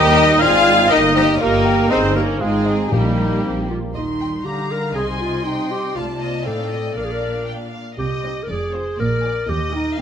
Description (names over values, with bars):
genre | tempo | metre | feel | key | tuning
quick classical-period movement for symphony orchestra | 119 BPM | 2/4 | straight | Eb major | A4 = 438 Hz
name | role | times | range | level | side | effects
rich studio violin section | melody | 0.0-10.0 s | Bb3 to Bb5 | -26 LUFS | left 2 dB | none
mellow cor anglais | second line | 0.0-3.7 s | G3 to F4 | -24 LUFS | right 2 dB | none
mellow hollow concert flute | second line | 0.0-3.7 s | Eb4 to D5 | -24 LUFS | left 1 dB | none
warm studio violin section | second line | 0.0-10.0 s | G4 to C6 | -26 LUFS | left 2 dB | none
mellow bassoon | accompaniment | 0.0-3.7 s | Bb3 to G4 | -24 LUFS | right 2 dB | none
warm studio viola section | accompaniment | 0.0-10.0 s | G3 to F5 | -22 LUFS | left 1 dB | none
mellow French horn section | sustained chords | 0.0-3.9 s | G3 to Eb4 | -24 LUFS | left 2 dB | none
warm studio cello section | bass | 0.0-10.0 s | Eb2 to F4 | -25 LUFS | equal | none
warm studio double bass section | bass | 0.0-10.0 s | F1 to Eb2 | -24 LUFS | right 3 dB | none
timpani | percussion | 0.0-0.4, 2.9-3.4 s | Bb2 to Eb3 | -24 LUFS | left 1 dB | none
mellow clarinet | second line | 3.7-10.0 s | C4 to Bb4 | -24 LUFS | equal | none
room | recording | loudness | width
moderate scoring stage reverb, RT60 1.9 s | close, detailed microphones | -16 LUFS | side -8 dB against mid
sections
0.0-3.9 A section; 3.9-10.0 B section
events
none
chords
0.4 Ab; 0.9 Eb/G; 1.9 Eb7/G; 2.4 Ab; 2.9 Eb/Bb; 3.4 Bb5; 3.9 Eb; 5.0 Ab/C; 6.0 F7/C; 7.0 Bb; 8.0 Cm; 8.5 Fm; 9.0 Bb7; 9.5 Eb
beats
0.41 | 0.91 1.41 | 1.91 2.41 | 2.92 3.44 | 3.94 4.45 | 4.95 5.45 | 5.95 6.46 | 6.97 7.47 | 7.99 8.49 | 8.99 9.48 | 9.98